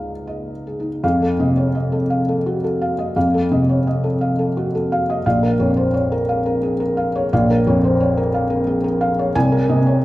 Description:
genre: neoclassical minimalist piano.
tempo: 86 BPM.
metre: 3/4.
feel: rubato.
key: unclear.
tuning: A4 = 442 Hz.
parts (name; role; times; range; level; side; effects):
felt-muted upright piano; solo; 0.0-10.0 s; Bb1 to Ab5; -16 LUFS; equal; none.
room: wet recital hall reverb, RT60 1.8 s.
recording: recorded in a church or concert hall.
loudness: -16 LUFS.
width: side -16 dB against mid.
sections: 0.0-1.0 A section; 1.0-10.0 B section.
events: none.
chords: 0.0 Dbadd9; 1.0 F7; 5.2 Bbmadd9; 9.3 Abadd9/C.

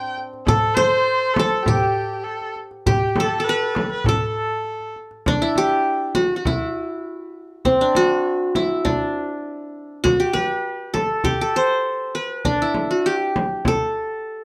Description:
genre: Turkish makam ensemble.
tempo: 100 BPM.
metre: 4/4.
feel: straight.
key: A makam huseyni.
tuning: A4 = 440 Hz.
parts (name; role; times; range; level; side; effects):
qanun; melody; 0.0-14.4 s; C4 to C5; -22 LUFS; equal; none.
rich erhu; second line; 0.0-5.0 s; G4 to G5-23c; -28 LUFS; equal; none.
darbuka; percussion; 0.0-5.2 s; none; -27 LUFS; equal; none.
frame drum; percussion; 0.5-13.8 s; none; -27 LUFS; equal; none.
room: moderate studio ambience, RT60 0.5 s.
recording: none.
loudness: -21 LUFS.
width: mono.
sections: 0.0-5.3 A section; 5.3-14.4 B section.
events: none.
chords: none.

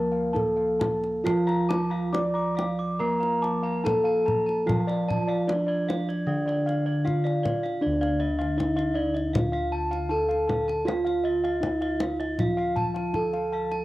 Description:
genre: Javanese gamelan.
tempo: 67-79 BPM.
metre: 4/4.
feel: straight.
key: D pelog.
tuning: A4 = 441 Hz.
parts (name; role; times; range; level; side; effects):
gamelan-type bronze metallophone; melody; 0.0-13.8 s; D4 to D5; -27 LUFS; equal; cassette tape.
gamelan-type bronze metallophone; accompaniment; 0.0-7.8 s; D3 to Bb3; -30 LUFS; right 1 dB; cassette tape.
gamelan-type bossed gongs; arpeggios; 0.0-13.7 s; D5 to D6; -33 LUFS; left 2 dB; cassette tape.
gamelan-type bossed gongs; bass; 0.0-13.8 s; D2 to A4; -30 LUFS; equal; none.
kendang; percussion; 0.4-13.8 s; none; -30 LUFS; left 1 dB; none.
gamelan-type bronze metallophone; arpeggios; 1.2-13.8 s; D5 to D6; -33 LUFS; right 1 dB; cassette tape.
room: moderate spring reverb, RT60 1.3 s, small room ambience.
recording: home recording on cassette.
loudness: -23 LUFS.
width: side -17 dB against mid.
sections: 0.0-7.8 A section; 7.8-13.8 B section.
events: none.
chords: none.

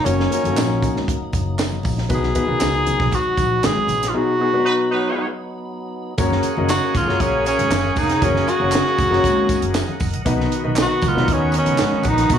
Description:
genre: uptempo 1960s-style soul.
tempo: 118 BPM.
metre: 4/4.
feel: straight.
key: F# major.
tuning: A4 = 439 Hz.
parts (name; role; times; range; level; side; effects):
breathy tenor saxophone; melody; 0.0-12.4 s; C#4 to G#4; -20 LUFS; equal; none.
tonewheel organ; sustained chords; 0.0-12.4 s; F#3 to F#5; -31 LUFS; right 1 dB; overdrive, lush chorus.
warm concert grand piano; accompaniment; 0.1-12.4 s; B2 to D#5; -23 LUFS; left 4 dB; none.
upright bass; bass; 0.1-12.4 s; E#1 to D#2; -23 LUFS; equal; none.
compact cocktail drum kit; drums; 0.1-12.4 s; hi-hat, kick drum, snare drum; -23 LUFS; right 1 dB; none.
congas; percussion; 0.1-12.4 s; none; -33 LUFS; right 2 dB; none.
tambourine and handclaps; percussion; 0.1-12.4 s; none; -33 LUFS; right 2 dB; none.
warm horn section; second line; 4.7-12.4 s; C#3 to B4; -25 LUFS; right 2 dB; none.
room: light reverb, small room ambience.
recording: studio reverb.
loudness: -16 LUFS.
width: side -8 dB against mid.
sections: 0.0-6.2 A section; 6.2-12.4 B section.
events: break 4.1-6.2; band accent 4.1-6.2.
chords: 0.0 F#; 2.1 B; 6.2 F#; 10.3 B.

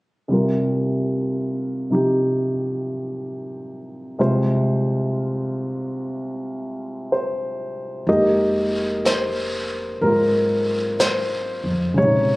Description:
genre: jazz ballad.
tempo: 62 BPM.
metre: 4/4.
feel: swing 66% on 8ths.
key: F minor.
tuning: A4 = 441 Hz.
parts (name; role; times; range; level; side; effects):
warm grand piano; accompaniment; 0.3-12.4 s; C2 to Eb5; -20 LUFS; equal; none.
upright bass; bass; 8.1-12.4 s; F1 to F2; -29 LUFS; equal; none.
vintage brush drum kit; drums; 8.1-12.4 s; brushed snare drum, hi-hat, snare drum; -29 LUFS; equal; none.
room: light reverb.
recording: recorded on a phone in the room, club reverb.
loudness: -19 LUFS.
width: side -22 dB against mid.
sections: 0.3-8.1 A section; 8.1-12.4 B section.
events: none.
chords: 0.3 C7sus4; 4.2 Fm/C; 8.1 Fm11.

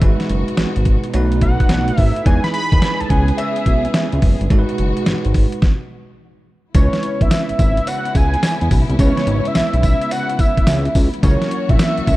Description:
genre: R&B, new jack swing.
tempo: 107 BPM.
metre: 4/4.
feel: swing 65% on 16ths.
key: C# minor.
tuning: A4 = 440 Hz.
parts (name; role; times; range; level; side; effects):
bell-like tine electric piano; accompaniment; 0.0-12.2 s; F#3 to B4; -24 LUFS; right 3 dB; medium stereo tremolo.
dark studio string section; sustained chords; 0.0-12.2 s; B2 to G#4; -27 LUFS; left 2 dB; none.
fat analog bass; bass; 0.0-12.2 s; F#1 to E2; -19 LUFS; equal; none.
boom bap sampler-style drum kit; drums; 0.0-12.2 s; hi-hat, kick drum, snare drum, tambourine; -16 LUFS; equal; none.
cowbell; percussion; 0.0-12.0 s; none; -37 LUFS; left 1 dB; none.
fat analog lead; melody; 1.4-12.2 s; C#5 to B5; -22 LUFS; equal; chorus, digital delay.
room: little or no reverb.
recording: dark, warm production.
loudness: -14 LUFS.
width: side -17 dB against mid.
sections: 0.0-6.7 A section; 6.7-12.2 B section.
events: stop 5.6-6.7.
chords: 0.0 G#m7; 1.1 B7; 2.3 Emaj7; 3.1 C#m7; 4.5 G#m7; 6.7 C#m7; 11.2 F#7.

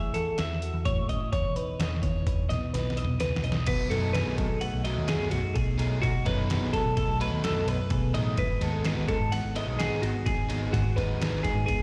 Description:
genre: math rock and midwest emo.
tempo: 128 BPM.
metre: 5/4.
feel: straight.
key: unclear.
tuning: A4 = 441 Hz.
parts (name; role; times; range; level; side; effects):
mellow electric guitar; accompaniment; 0.0-11.8 s; E2 to B4; -34 LUFS; equal; none.
twelve-string electric guitar; arpeggios; 0.0-11.8 s; F#4 to F#5; -34 LUFS; equal; digital delay, slapback echo.
hollow-body short-scale picked electric bass; bass; 0.0-11.8 s; E1 to B2; -34 LUFS; equal; none.
trip hop sampler-style drum kit; drums; 0.1-11.8 s; crash cymbal, hi-hat, kick drum, ride cymbal, snare drum, toms; -34 LUFS; equal; overdrive.
overdriven electric guitar; riff; 3.9-11.5 s; B2 to D#4; -38 LUFS; equal; slapback echo.
room: little or no reverb.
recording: live gig heard through the venue's PA, recital hall reverb, faint mains hum.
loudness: -28 LUFS.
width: mono.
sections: 0.0-3.7 A section; 3.7-11.8 B section.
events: drum fill 2.7-3.7.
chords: 0.0 Amaj7; 1.3 E5; 3.7 B7; 8.4 G#m7.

